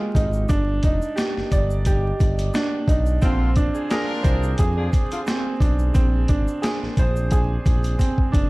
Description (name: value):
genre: hip hop, boom-bap hip-hop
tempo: 88 BPM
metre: 4/4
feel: swing 54% on 16ths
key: unclear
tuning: A4 = 440 Hz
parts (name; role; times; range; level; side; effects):
- warm grand piano; accompaniment; 0.0-8.5 s; Ab3 to D5; -25 LUFS; right 2 dB; none
- boom bap sampler-style drum kit; drums; 0.1-8.5 s; hi-hat, kick drum, snare drum; -21 LUFS; equal; vintage 12-bit sampler grit
- smooth synth bass; bass; 0.2-8.5 s; F1 to F2; -22 LUFS; equal; none
- tube shaker; percussion; 0.2-8.5 s; none; -49 LUFS; left 6 dB; none
- mellow horn section; stabs; 3.2-5.2 s; D3 to Bb4; -31 LUFS; left 1 dB; tape echo
room: small room ambience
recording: dark, warm production, vinyl crackle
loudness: -18 LUFS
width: side -22 dB against mid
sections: 0.0-8.5 A section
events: drum fill 8.0-8.5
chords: 0.5 Ebmaj7; 3.2 Bb9